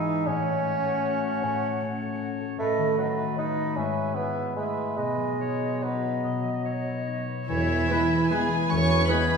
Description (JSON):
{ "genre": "classical", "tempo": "134-168 BPM", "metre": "3/4", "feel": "rubato", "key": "E major", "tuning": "A4 = 440 Hz", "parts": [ { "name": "mellow cor anglais", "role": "second line", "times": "0.0-9.4 s", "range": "G#4 to E5", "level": "-35 LUFS", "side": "right 3 dB", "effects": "none" }, { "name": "silver concert flute", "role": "second line", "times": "0.0-9.4 s", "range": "D#5 to G#6", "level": "-34 LUFS", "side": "left 3 dB", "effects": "none" }, { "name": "warm clarinet", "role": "second line", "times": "0.0-9.4 s", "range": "G#3 to C#5", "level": "-33 LUFS", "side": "equal", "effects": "none" }, { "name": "warm bassoon", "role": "accompaniment", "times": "0.0-9.4 s", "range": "E3 to D#4", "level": "-29 LUFS", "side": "right 3 dB", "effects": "none" }, { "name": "concert harp", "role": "arpeggios", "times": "0.0-9.4 s", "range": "G#2 to B5", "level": "-30 LUFS", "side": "left 6 dB", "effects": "none" }, { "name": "warm chamber violin section", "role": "melody", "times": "7.5-9.4 s", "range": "E5 to C#6", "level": "-30 LUFS", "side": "left 4 dB", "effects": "none" }, { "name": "warm chamber violin section", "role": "second line", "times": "7.5-9.4 s", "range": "E4 to C#5", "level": "-33 LUFS", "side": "equal", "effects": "none" }, { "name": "dark chamber cello section", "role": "bass", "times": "7.5-9.4 s", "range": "E3 to C#4", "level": "-32 LUFS", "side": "right 5 dB", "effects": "none" }, { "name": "dark studio double bass section", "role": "bass", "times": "7.5-9.0 s", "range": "E2", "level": "-29 LUFS", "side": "right 2 dB", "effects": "none" }, { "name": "warm tuba", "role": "bass", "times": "7.5-9.0 s", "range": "E1", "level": "-35 LUFS", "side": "right 2 dB", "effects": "none" }, { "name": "warm chamber viola section", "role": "accompaniment", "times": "7.9-9.2 s", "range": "E3 to G#3", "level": "-35 LUFS", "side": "right 4 dB", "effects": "none" }, { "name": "bright trombone section", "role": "sustained chords", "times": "7.9-9.2 s", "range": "E3 to G#3", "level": "-35 LUFS", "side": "right 2 dB", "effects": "none" }, { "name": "mellow French horn section", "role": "sustained chords", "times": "7.9-9.2 s", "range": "B3 to E4", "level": "-36 LUFS", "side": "left 1 dB", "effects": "none" }, { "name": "clear trumpet section", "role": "stabs", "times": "7.9-9.2 s", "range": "B4", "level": "-36 LUFS", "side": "right 2 dB", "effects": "none" } ], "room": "wet recital hall reverb, RT60 1.8 s", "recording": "heard from further back in the room", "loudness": "-24 LUFS", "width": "side -5 dB against mid", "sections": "0.0-7.5 A section; 7.5-9.4 B section", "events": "none", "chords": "0.3 F#m/A; 2.6 B7/A; 3.8 E/G#; 5.0 B; 7.5 E", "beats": "| 0.26 0.65 1.05 | 1.43 1.81 2.21 | 2.59 2.98 3.38 | 3.76 4.15 4.56 | 4.97 5.39 5.83 | 6.24 6.65 7.08 | 7.49 7.89 8.31 | 8.70 9.09" }